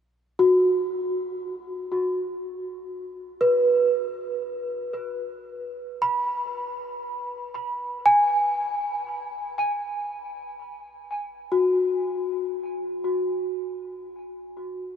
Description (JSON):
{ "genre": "ambient", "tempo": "free time", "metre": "none", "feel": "none", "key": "unclear", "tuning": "A4 = 436 Hz", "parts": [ { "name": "celesta", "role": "solo", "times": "0.4-15.0 s", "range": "F#4 to B5", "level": "-24 LUFS", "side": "equal", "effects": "analog chorus, tape echo" } ], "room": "wet huge ambient reverb, RT60 7.2 s", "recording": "dreamy mix soaked in reverb", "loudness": "-23 LUFS", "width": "side -8 dB against mid", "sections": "0.0-15.0 A section", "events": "none", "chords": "0.0 F#sus24; 13.5 N.C." }